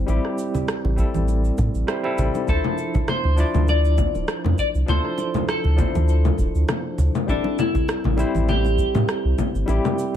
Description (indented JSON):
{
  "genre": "sunset chillout",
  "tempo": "100 BPM",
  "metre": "4/4",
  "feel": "swing 55% on 16ths",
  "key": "D minor",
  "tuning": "A4 = 440 Hz",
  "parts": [
    { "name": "barky tine electric piano", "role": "accompaniment", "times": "0.0-10.2 s", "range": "F3 to D5", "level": "-26 LUFS", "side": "moving between left 4 dB and right 4 dB", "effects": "overdrive, fast tremolo, auto-pan, ping-pong delay" },
    { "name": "warm sub bass", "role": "bass", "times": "0.0-9.8 s", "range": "D1 to A2", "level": "-20 LUFS", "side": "equal", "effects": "tube saturation" },
    { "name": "electronic cabasa, rim click and congas", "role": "drums", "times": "0.1-10.1 s", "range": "none", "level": "-26 LUFS", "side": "left 2 dB", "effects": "none" },
    { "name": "bongos and congas", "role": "percussion", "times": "0.1-9.8 s", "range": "none", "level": "-29 LUFS", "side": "right 2 dB", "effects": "none" },
    { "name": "electronic kick drum", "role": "drums", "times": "1.0-9.5 s", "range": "none", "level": "-24 LUFS", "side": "equal", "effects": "none" },
    { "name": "clean electric guitar", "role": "melody", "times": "2.5-10.2 s", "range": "D4 to D5", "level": "-26 LUFS", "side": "left 2 dB", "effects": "wide subtle chorus, digital delay" }
  ],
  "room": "little or no reverb",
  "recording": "none",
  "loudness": "-19 LUFS",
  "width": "side -10 dB against mid",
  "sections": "0.0-10.2 A section",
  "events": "none",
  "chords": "0.0 Am7; 2.5 Dm9; 7.3 Am7",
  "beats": "| 0.08 0.68 1.28 1.88 | 2.48 3.08 3.68 4.28 | 4.88 5.48 6.08 6.68 | 7.28 7.88 8.48 9.08 | 9.68"
}